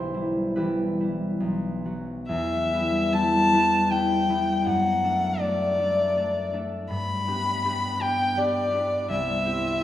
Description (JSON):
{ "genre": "classical, romantic duo for violin and harp", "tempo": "64-84 BPM", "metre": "3/4", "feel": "rubato", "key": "E minor", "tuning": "A4 = 441 Hz", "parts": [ { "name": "concert harp", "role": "accompaniment", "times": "0.0-9.8 s", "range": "B1 to C5", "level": "-26 LUFS", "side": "equal", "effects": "none" }, { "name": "warm violin", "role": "melody", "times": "2.3-9.8 s", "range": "D5 to B5", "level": "-23 LUFS", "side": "left 2 dB", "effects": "none" } ], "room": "wet recital hall reverb, RT60 1.4 s", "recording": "heard from further back in the room", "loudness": "-22 LUFS", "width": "side -12 dB against mid", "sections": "0.0-2.3 A section; 2.3-9.8 B section", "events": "none", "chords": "0.0 Em/B; 1.4 B5; 2.3 Em; 4.7 D/F#; 6.9 G; 9.1 C" }